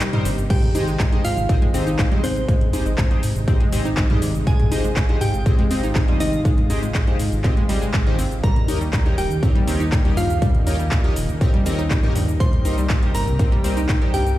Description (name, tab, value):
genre	progressive house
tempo	121 BPM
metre	4/4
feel	straight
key	Ab major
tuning	A4 = 440 Hz
part	glassy synth bell	melody	0.0-14.4 s	C4 to C6	-28 LUFS	equal	chorus, tremolo, sidechain pumping, tape echo
part	lush unison pad	sustained chords	0.0-14.4 s	C3 to G4	-31 LUFS	equal	chorus, sidechain pumping
part	analog pluck	arpeggios	0.0-14.2 s	G2 to Eb4	-27 LUFS	equal	chorus, sidechain pumping, tape echo
part	deep house drum kit	drums	0.0-14.4 s	crash cymbal, handclaps, hi-hat, shaker	-30 LUFS	left 1 dB	overdrive
part	chorused polysynth	stabs	0.1-14.1 s	Eb4 to Eb5	-29 LUFS	left 1 dB	phaser, sidechain pumping, tape echo
part	electronic toms and congas	percussion	0.1-13.1 s	none	-26 LUFS	equal	sidechain pumping on toms, sidechain pumping on perc
part	dark detuned saw bass	bass	0.3-14.4 s	Eb1 to Ab2	-23 LUFS	equal	sidechain pumping
part	electronic kick drum	drums	0.5-14.0 s	none	-18 LUFS	equal	none
room	little or no reverb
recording	played on a big sound system in a bare room, large studio reverb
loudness	-17 LUFS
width	side -15 dB against mid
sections	0.5-14.4 A section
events	break 0.0-0.5; drop 0.5-14.4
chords	0.0 Cm7; 0.5 Abmaj7; 8.4 Eb7; 12.4 Cm7